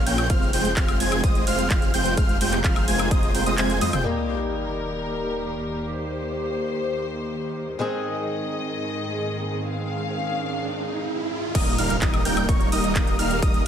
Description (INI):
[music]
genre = EDM, festival progressive house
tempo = 128 BPM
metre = 4/4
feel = straight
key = unclear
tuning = A4 = 440 Hz
[part]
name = muted studio string section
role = sustained chords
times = 0.0-13.7 s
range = Eb2 to F5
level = -29 LUFS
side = left 1 dB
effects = sidechain pumping
[part]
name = wide unison lead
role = arpeggios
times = 0.0-4.0, 11.6-13.6 s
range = Db6 to Ab6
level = -28 LUFS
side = equal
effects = sidechain pumping, ping-pong delay
[part]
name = dense compressed supersaw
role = riff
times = 0.0-4.0, 11.6-13.6 s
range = G3 to Ab5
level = -25 LUFS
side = right 1 dB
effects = sidechain pumping, ping-pong delay
[part]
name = wide detuned saw bass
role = bass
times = 0.0-4.0, 11.5-13.6 s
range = Eb1 to F2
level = -28 LUFS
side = equal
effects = chorus, sidechain pumping
[part]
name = house drum kit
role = drums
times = 0.1-4.0, 11.6-13.6 s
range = crash cymbal, handclaps, hi-hat, ride cymbal, shaker, toms, woodblock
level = -29 LUFS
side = equal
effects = low-pass filter on hats, low-pass filter on perc, low-pass filter on snare, low-pass filter on cymbals, low-pass filter on toms, low-pass filter on room
[part]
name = electronic kick drum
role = drums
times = 0.3-3.2, 11.5-13.5 s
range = none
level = -22 LUFS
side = equal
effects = overdrive
[part]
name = picked swing-style acoustic guitar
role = accompaniment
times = 4.0-11.5 s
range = Eb3 to Ab4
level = -31 LUFS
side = left 2 dB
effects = sidechain pumping, ping-pong delay
[part]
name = sub drop, riser and impact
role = sound effects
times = 4.0-13.4 s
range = none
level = -32 LUFS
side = right 1 dB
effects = none
[sound]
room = light reverb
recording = none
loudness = -21 LUFS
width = side -9 dB against mid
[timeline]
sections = 0.0-4.1 A section; 4.1-11.6 B section; 11.6-13.7 A section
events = drop 0.0-4.1, 11.6-13.7; kick drops out 3.6-4.1; drum fill 3.8; impact 4.1-5.9, 11.6-13.4; riser 9.1-11.6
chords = 0.3 Fm; 4.1 Eb; 7.8 Ab; 11.6 Eb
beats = | 0.30 0.77 1.24 1.71 | 2.18 2.65 3.11 3.58 | 4.05 4.52 4.99 5.46 | 5.93 6.39 6.86 7.33 | 7.80 8.27 8.74 9.21 | 9.68 10.14 10.61 11.08 | 11.55 12.02 12.49 12.96 | 13.43